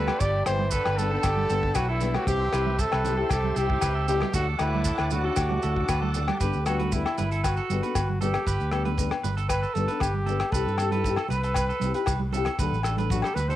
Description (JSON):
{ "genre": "highlife guitar band", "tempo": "116 BPM", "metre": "4/4", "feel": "straight", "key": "G major", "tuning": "A4 = 440 Hz", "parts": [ { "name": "bright trumpet", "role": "melody", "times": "0.0-13.6 s", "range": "E4 to D5", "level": "-29 LUFS", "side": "equal", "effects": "cassette tape" }, { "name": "growling trombone", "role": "second line", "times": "0.0-6.2 s", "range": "G2 to G3", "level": "-37 LUFS", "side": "right 6 dB", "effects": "cassette tape" }, { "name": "nylon-string guitar", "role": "accompaniment", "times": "0.0-13.3 s", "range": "F#3 to A4", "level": "-32 LUFS", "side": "left 6 dB", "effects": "cassette tape" }, { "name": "bright tonewheel organ", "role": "sustained chords", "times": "0.0-6.4 s", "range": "E5 to D6", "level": "-39 LUFS", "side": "equal", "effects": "slow rotary speaker, overdrive, chorus vibrato, cassette tape" }, { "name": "electric guitar at the edge of break-up", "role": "arpeggios", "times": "0.0-13.6 s", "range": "G4 to B4", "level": "-33 LUFS", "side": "right 8 dB", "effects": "cassette tape" }, { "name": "fingered electric bass", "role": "bass", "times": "0.0-13.6 s", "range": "G1 to G2", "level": "-28 LUFS", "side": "equal", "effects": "none" }, { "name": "damped 70s drum kit", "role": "drums", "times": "0.1-13.6 s", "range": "hi-hat, kick drum, rim click", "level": "-32 LUFS", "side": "equal", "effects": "cassette tape" }, { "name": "agogo bells", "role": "percussion", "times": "0.1-13.4 s", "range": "none", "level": "-33 LUFS", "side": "left 6 dB", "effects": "none" }, { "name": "congas", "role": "percussion", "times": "0.1-13.6 s", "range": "none", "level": "-35 LUFS", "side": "right 8 dB", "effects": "none" }, { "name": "maracas", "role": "percussion", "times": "0.2-13.6 s", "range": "none", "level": "-39 LUFS", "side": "right 8 dB", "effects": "none" } ], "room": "light reverb, studio reverb", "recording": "home recording on cassette", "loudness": "-23 LUFS", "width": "side -13 dB against mid", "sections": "0.0-6.4 A section; 6.4-13.6 B section", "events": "trumpet solo 6.4-13.6", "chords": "0.0 Gadd9; 2.3 C; 4.3 D; 6.4 Gadd9; 10.5 C; 12.6 D", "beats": "| 0.21 0.73 1.24 1.76 | 2.28 2.79 3.31 3.83 | 4.34 4.86 5.38 5.89 | 6.41 6.92 7.44 7.95 | 8.47 8.98 9.50 10.02 | 10.53 11.05 11.56 12.08 | 12.59 13.11" }